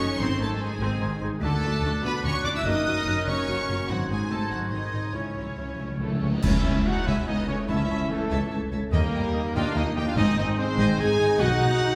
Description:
cinematic, heroic adventure film score; 146 BPM; 3/4; straight; C# minor; A4 = 440 Hz
warm symphonic violin section; melody; 0.0-12.0 s; A4 to E6; -37 LUFS; equal
clear clarinet; second line; 0.0-11.9 s; C#4 to D#5; -41 LUFS; equal
large flute ensemble; second line; 0.0-11.9 s; F#5 to G#6; -42 LUFS; equal
mellow cor anglais; second line; 0.0-12.0 s; A3 to D5; -38 LUFS; equal
rich symphonic violin section; second line; 0.0-11.7 s; C#4 to A5; -42 LUFS; equal
clear studio viola section; accompaniment; 0.0-12.0 s; D#3 to F#4; -37 LUFS; equal
concert harp; arpeggios; 0.0-12.0 s; F#2 to D#6; -37 LUFS; equal
bright trumpet section; stabs; 0.0-12.0 s; C#4 to G#5; -36 LUFS; equal
rich symphonic cello section; bass; 0.0-11.7 s; C#2 to E4; -34 LUFS; equal
rich symphonic double bass section; bass; 0.0-11.7 s; F#1 to D#2; -33 LUFS; equal
mellow French horn section; sustained chords; 0.2-12.0 s; A3 to G#4; -32 LUFS; equal
cymbal swell, clash cymbals and concert bass drum; percussion; 3.9-7.2 s; -32 LUFS; equal
timpani; percussion; 5.1-10.7 s; G#2 to C#3; -33 LUFS; equal
mellow tuba; bass; 6.4-11.7 s; G#1 to D#2; -33 LUFS; equal
wet recital hall reverb, RT60 1.6 s; recorded in a church or concert hall; -25 LUFS; mono
0.0-6.4 A section; 6.4-12.0 B section
timpani fill 5.1-6.4; band accent 6.4-6.9
0.2 G#; 1.4 D; 2.7 F#; 3.9 G#7; 5.1 C#m; 7.7 A/C#; 8.9 D#; 10.2 G#; 11.4 B
| 0.20 0.61 1.02 | 1.43 1.84 2.25 | 2.66 3.07 3.48 | 3.89 4.31 4.72 | 5.15 5.58 6.02 | 6.44 6.87 7.28 | 7.69 8.11 8.52 | 8.93 9.35 9.76 | 10.17 10.58 10.99 | 11.40 11.81

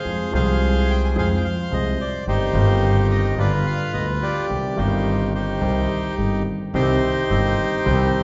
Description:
tango; 108 BPM; 4/4; rubato; C minor; A4 = 440 Hz
bandoneon; melody; 0.0-8.2 s; Eb4 to Ab5; -26 LUFS; equal
warm concert grand piano; accompaniment; 0.0-8.1 s; G1 to Ab4; -25 LUFS; equal
upright bass; bass; 0.1-8.1 s; G1 to F2; -25 LUFS; equal
bandoneon; stabs; 6.7-8.1 s; C4 to G4; -31 LUFS; equal
wet recital hall reverb, RT60 1.9 s; recorded in a church or concert hall, nothing above 7.6 kHz; -21 LUFS; mono
0.0-6.7 A section; 6.7-8.2 A section
0.1 Fm; 2.3 Cm/G; 3.4 G7; 4.5 Cm
| 0.06 0.61 1.17 1.72 | 2.27 2.83 3.38 3.94 | 4.50 5.06 5.62 6.18 | 6.74 7.30 7.86

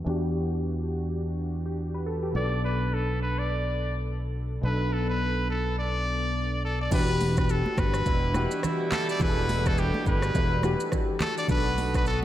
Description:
afrobeats; 105 BPM; 4/4; swing 58% on 16ths; E minor; A4 = 439 Hz
warm analog keys; accompaniment; 0.0-12.2 s; B2 to B4; -31 LUFS; left 1 dB; chorus, low-pass filter
fingered electric bass; bass; 0.0-12.2 s; E1 to E2; -28 LUFS; equal
bright trumpet; melody; 2.4-12.2 s; G4 to D5; -30 LUFS; equal; low-pass filter, diffuse ambient delay
afro-pop drum kit; drums; 6.9-12.2 s; crash cymbal, handclaps, hi-hat, kick drum, rim click, shaker; -29 LUFS; equal
congas; percussion; 6.9-12.2 s; -34 LUFS; right 2 dB
clear horn section; second line; 8.1-12.2 s; B2 to F#4; -35 LUFS; right 2 dB; diffuse ambient delay
moderate lush hall reverb, RT60 1.8 s; dreamy mix soaked in reverb; -24 LUFS; side -12 dB against mid
0.0-6.9 A section; 6.9-12.2 B section
filter sweep 0.0-6.9
0.0 Em9; 2.4 Bm7; 6.9 Em9; 11.5 Bm7
| 0.06 0.64 1.21 1.78 | 2.35 2.92 3.49 4.06 | 4.63 5.21 5.78 6.35 | 6.92 7.49 8.06 8.63 | 9.21 9.78 10.35 10.92 | 11.49 12.06

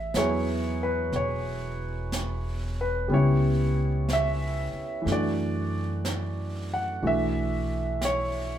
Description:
jazz ballad; 61 BPM; 4/4; swing 66% on 8ths; A major; A4 = 440 Hz
warm concert grand piano; accompaniment; 0.0-8.6 s; E3 to F#5; -28 LUFS; equal
upright bass; bass; 0.0-8.6 s; E1 to F#2; -28 LUFS; equal
jazz brush drum kit; drums; 0.1-8.6 s; brushed snare drum, hi-hat, snare drum; -37 LUFS; right 2 dB
moderate club reverb, RT60 0.9 s; heard from further back in the room; -25 LUFS; side -10 dB against mid
0.0-8.6 A section
0.0 Amaj9 (rootless); 3.1 C#m7b5; 5.1 Dadd9/F#; 7.0 Bm9
0.16 1.14 2.13 | 3.11 4.09 5.07 6.05 | 7.03 8.01

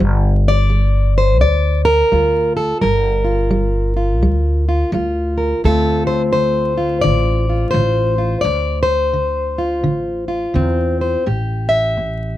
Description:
acoustic country blues, solo or duo; 85 BPM; 4/4; swing 63% on 8ths; D minor; A4 = 438 Hz
fingerpicked plugged-in steel-string acoustic guitar; melody; 0.0-12.4 s; A2 to E5; -16 LUFS; equal
upright bass; bass; 0.0-12.4 s; G1 to E2; -18 LUFS; equal
light reverb; vinyl crackle; -14 LUFS; side -14 dB against mid
0.0-12.4 A section
0.0 Gm7; 5.6 Dm7; 11.3 A7(no3)
| 0.01 0.71 1.42 2.12 | 2.83 3.53 4.23 4.93 | 5.64 6.34 7.04 7.75 | 8.45 9.15 9.86 10.56 | 11.27 11.97

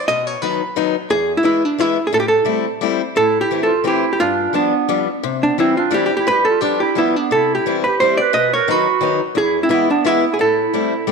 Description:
musette waltz; 175 BPM; 3/4; swing 53% on 8ths, rubato; A minor; A4 = 440 Hz
hollow-body jazz guitar; melody; 0.0-11.1 s; D4 to D#5; -17 LUFS; right 1 dB
picked old ladder-braced acoustic guitar; accompaniment; 0.1-11.1 s; E2 to E4; -21 LUFS; left 10 dB
warm clarinet; second line; 3.2-11.1 s; B3 to B4; -20 LUFS; right 9 dB; slapback echo
wet echo chamber reverb, RT60 1.7 s; 1960s-style stereo with parts hard left and right; -14 LUFS; side -4 dB against mid
0.0-3.2 A section; 3.2-11.1 A section
0.1 B; 1.1 E; 2.1 Am7; 3.2 Am; 4.2 G7; 5.2 Cadd9; 6.3 G7; 7.3 C; 8.3 B; 9.4 E; 10.4 Am7
| 0.09 0.43 0.77 | 1.11 1.45 1.79 | 2.13 2.47 2.82 | 3.17 3.52 3.86 | 4.21 4.55 4.89 | 5.24 5.58 5.92 | 6.26 6.61 6.96 | 7.31 7.66 8.00 | 8.34 8.68 9.02 | 9.36 9.71 10.05 | 10.40 10.74 11.10

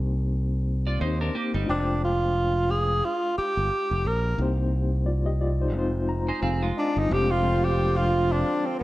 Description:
soul; 89 BPM; 4/4; swing 58% on 16ths; F dorian; A4 = 440 Hz
reed electric piano; accompaniment; 0.0-8.8 s; F3 to Bb5; -31 LUFS; left 3 dB; fast tremolo
modern bright fingered electric bass; bass; 0.0-8.8 s; F1 to Eb2; -25 LUFS; equal
clean electric guitar; riff; 0.9-1.9, 6.3-7.1 s; G3 to D5; -32 LUFS; right 2 dB; wide subtle chorus
breathy tenor saxophone; melody; 1.7-8.8 s; C4 to Bb4; -24 LUFS; equal; slapback echo
mellow horn section; stabs; 7.1-8.8 s; D3 to F4; -30 LUFS; right 1 dB; slapback echo
light reverb, small room ambience; -22 LUFS; side -17 dB against mid
0.0-7.1 A section; 7.1-8.8 B section
reed electric piano fill 5.8-7.1
0.0 Cm7; 1.7 Fm69; 4.4 Cm7; 5.8 Fm7; 7.1 Fm69
0.33 1.01 | 1.69 2.37 3.04 3.72 | 4.40 5.08 5.75 6.43 | 7.11 7.79 8.46

